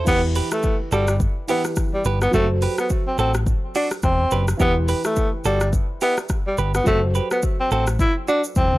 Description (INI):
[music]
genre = afrobeats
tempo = 106 BPM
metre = 4/4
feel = swing 58% on 16ths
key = E minor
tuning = A4 = 440 Hz
[part]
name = dark baby grand piano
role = accompaniment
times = 0.0-8.8 s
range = E3 to C5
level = -29 LUFS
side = right 1 dB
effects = none
[part]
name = direct-recorded clean electric guitar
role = riff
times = 0.0-8.4 s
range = C4 to B4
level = -28 LUFS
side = right 6 dB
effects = tape echo
[part]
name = breathy tenor saxophone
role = melody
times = 0.1-8.8 s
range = G3 to E4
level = -22 LUFS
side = equal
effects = none
[part]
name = fingered electric bass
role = bass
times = 0.1-8.8 s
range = E1 to A1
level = -21 LUFS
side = equal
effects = none
[part]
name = afro-pop drum kit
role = drums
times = 0.1-8.8 s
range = crash cymbal, hi-hat, kick drum, rim click, shaker, toms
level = -24 LUFS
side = equal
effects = none
[sound]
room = digital ambience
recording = dry, gritty hardware recording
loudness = -18 LUFS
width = side -17 dB against mid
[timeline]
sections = 0.1-8.8 A section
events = drum fill 8.6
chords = 0.1 Em; 2.3 F#dim; 4.6 Em; 6.9 F#dim